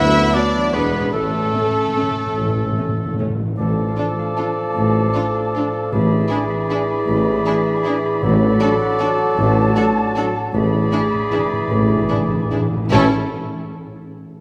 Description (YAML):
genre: classical, orchestral ballroom waltz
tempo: 139-169 BPM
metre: 3/4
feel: rubato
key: A major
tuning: A4 = 436 Hz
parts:
  - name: dark studio violin section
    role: melody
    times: 0.0-13.1 s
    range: G#4 to E5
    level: -30 LUFS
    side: equal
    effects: none
  - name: clear studio violin section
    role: second line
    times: 0.0-13.1 s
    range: A3 to F#4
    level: -34 LUFS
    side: equal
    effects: none
  - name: large flute ensemble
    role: second line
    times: 0.0-13.1 s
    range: A4 to B5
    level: -30 LUFS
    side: equal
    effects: none
  - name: warm clarinet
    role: second line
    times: 0.0-13.1 s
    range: G#4 to B4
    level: -28 LUFS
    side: equal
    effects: none
  - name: warm oboe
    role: second line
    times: 0.0-13.1 s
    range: A4 to E5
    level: -29 LUFS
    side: equal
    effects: none
  - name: warm French horn section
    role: sustained chords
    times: 0.0-13.1 s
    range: E3 to D4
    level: -32 LUFS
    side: equal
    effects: none
  - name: concert harp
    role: arpeggios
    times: 0.0-13.1 s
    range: A2 to A5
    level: -30 LUFS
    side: equal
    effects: none
  - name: mellow trumpet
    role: stabs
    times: 0.0-13.1 s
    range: A3 to A4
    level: -30 LUFS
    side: equal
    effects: none
  - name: dark chamber cello section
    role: bass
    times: 0.0-13.1 s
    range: D2 to A2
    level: -27 LUFS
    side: equal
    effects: none
  - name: dark symphonic double bass section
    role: bass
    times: 0.0-13.1 s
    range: E1 to D2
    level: -28 LUFS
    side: equal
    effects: none
  - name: mellow tuba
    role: bass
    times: 0.0-13.1 s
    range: E1 to D2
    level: -28 LUFS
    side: equal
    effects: none
  - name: dark symphonic viola section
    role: accompaniment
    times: 0.3-13.1 s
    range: F#3 to D4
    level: -29 LUFS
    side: equal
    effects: none
  - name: timpani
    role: percussion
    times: 1.1-13.1 s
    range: A2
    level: -28 LUFS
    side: equal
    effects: none
  - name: mellow bassoon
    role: accompaniment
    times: 3.6-13.1 s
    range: E3 to F#3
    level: -28 LUFS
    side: equal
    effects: none
room: wet concert hall reverb, RT60 2.4 s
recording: none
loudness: -18 LUFS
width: mono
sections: 0.0-3.6 A section; 3.6-12.9 B section; 12.9-14.1 C section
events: timpani fill 1.1-3.6, 10.5-12.9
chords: 0.0 Bm/D; 0.7 E7; 1.1 A; 3.6 Dm/A; 5.9 E7/A; 8.2 D/A; 10.5 E7/A; 12.9 A